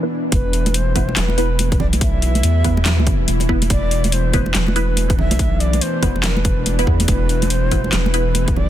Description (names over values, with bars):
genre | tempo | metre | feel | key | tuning
deep dubstep | 142 BPM | 4/4 | swing 61% on 16ths, half-time | unclear | A4 = 440 Hz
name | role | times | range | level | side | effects
bowed-like drone | sustained chords | 0.0-8.7 s | B2 to E4 | -24 LUFS | left 1 dB | built-in reverb
filtered dub chord stab | stabs | 0.0-8.2 s | B3 to B4 | -26 LUFS | equal | phaser, wide subtle chorus, dub echo
breathy bright long shakuhachi | melody | 0.3-8.7 s | B4 to E5 | -26 LUFS | equal | dub echo
soft dub sub bass | bass | 0.3-8.7 s | E1 to E2 | -19 LUFS | equal | none
dubstep drum kit | drums | 0.3-8.5 s | handclaps, hi-hat, snare drum | -22 LUFS | left 2 dB | none
electronic kick drum | drums | 0.3-8.5 s | none | -20 LUFS | equal | none
congas | percussion | 0.7-8.7 s | none | -25 LUFS | right 2 dB | dub echo
room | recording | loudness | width
little or no reverb | dense, heavily limited modern master | -15 LUFS | side -12 dB against mid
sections
0.3-8.7 A section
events
drop 0.3-8.7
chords
0.3 E5